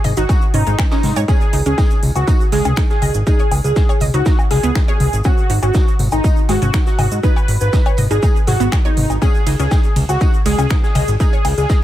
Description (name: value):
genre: melodic techno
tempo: 121 BPM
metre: 4/4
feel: straight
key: unclear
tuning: A4 = 440 Hz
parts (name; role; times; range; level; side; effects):
- wide unison lead; melody; 0.0-11.8 s; D#4 to B4; -22 LUFS; equal; analog chorus, sidechain pumping, ping-pong delay
- dark detuned synth bell; second line; 0.0-11.8 s; D#4 to B4; -27 LUFS; equal; chorus, sidechain pumping, ping-pong delay
- analog pluck; arpeggios; 0.0-11.8 s; G#3 to D#5; -25 LUFS; right 2 dB; chorus, sidechain pumping, ping-pong delay
- fat analog bass; bass; 0.0-11.7 s; G#1 to G#2; -17 LUFS; equal; sidechain pumping
- tambourine and snare drum; drums; 0.0-11.8 s; none; -36 LUFS; equal; high-pass filter on snare, high-pass filter on perc, high-pass filter on room
- techno drum kit; drums; 0.0-11.8 s; finger snaps, hi-hat, ride cymbal, toms, woodblock; -22 LUFS; left 2 dB; none
- tube shaker; percussion; 0.2-11.8 s; none; -36 LUFS; right 6 dB; none
- electronic kick drum; drums; 0.3-11.8 s; none; -15 LUFS; equal; none
room: little or no reverb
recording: none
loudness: -13 LUFS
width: side -13 dB against mid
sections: 0.0-11.8 A section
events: none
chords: 0.0 G#5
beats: 0.29 0.79 | 1.28 1.78 2.27 2.77 | 3.27 3.76 4.26 4.75 | 5.25 5.75 6.24 6.74 | 7.23 7.73 8.22 8.72 | 9.22 9.71 10.21 10.70 | 11.20 11.70